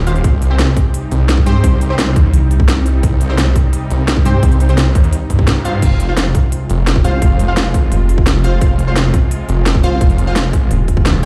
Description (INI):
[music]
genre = dark technical drum and bass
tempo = 172 BPM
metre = 4/4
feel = straight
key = F minor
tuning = A4 = 442 Hz
[part]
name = swarming drone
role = sustained chords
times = 0.0-11.3 s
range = C3 to G4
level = -23 LUFS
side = equal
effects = built-in reverb, sidechain pumping
[part]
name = snarling distorted saw bass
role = bass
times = 0.0-11.3 s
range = Eb1 to G2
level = -17 LUFS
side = equal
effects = distortion, overdrive, sidechain pumping
[part]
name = orchestra-hit-like synth stab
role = stabs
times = 0.1-11.3 s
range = C4 to F5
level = -26 LUFS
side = equal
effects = built-in reverb, phaser, tape echo
[part]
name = drum and bass drum kit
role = drums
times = 0.1-11.3 s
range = crash cymbal, hi-hat, snare drum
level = -22 LUFS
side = equal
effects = none
[part]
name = electronic kick drum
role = drums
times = 0.2-11.0 s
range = none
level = -15 LUFS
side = equal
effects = overdrive
[part]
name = vowel-sweep wobble bass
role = bass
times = 1.5-4.4, 7.0-11.0 s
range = Eb1 to G2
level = -15 LUFS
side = equal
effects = chorus
[sound]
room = light reverb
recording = played on a big sound system in a bare room, large studio reverb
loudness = -13 LUFS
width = mono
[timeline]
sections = 0.0-11.3 A section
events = none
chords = 0.2 Cm; 5.8 Fm